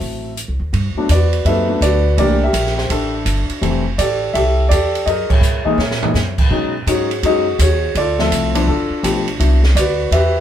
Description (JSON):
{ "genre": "jazz piano trio", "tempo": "166 BPM", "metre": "4/4", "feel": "swing 65% on 8ths", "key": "unclear", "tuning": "A4 = 440 Hz", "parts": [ { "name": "warm grand piano", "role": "melody", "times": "0.0-10.4 s", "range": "E3 to Fb5", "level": "-17 LUFS", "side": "left 1 dB", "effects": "none" }, { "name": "upright bass", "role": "bass", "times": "0.0-10.4 s", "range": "F1 to B2", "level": "-18 LUFS", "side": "equal", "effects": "none" }, { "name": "open jazz drum kit", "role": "drums", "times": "0.0-10.2 s", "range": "crash cymbal, hi-hat, kick drum, ride cymbal, snare drum, toms", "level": "-22 LUFS", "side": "right 2 dB", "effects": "none" } ], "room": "moderate studio reverb, RT60 0.6 s", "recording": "band playing live in one room", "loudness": "-14 LUFS", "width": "side -10 dB against mid", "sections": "0.7-10.4 A section", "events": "band accent 5.2; drum fill 5.8-6.1", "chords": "0.0 D9; 0.7 Gmaj9; 2.2 C13; 3.6 Fmaj9; 5.1 F#13; 6.5 B69; 8.0 Dm7; 8.7 G9; 9.4 Cmaj9#11" }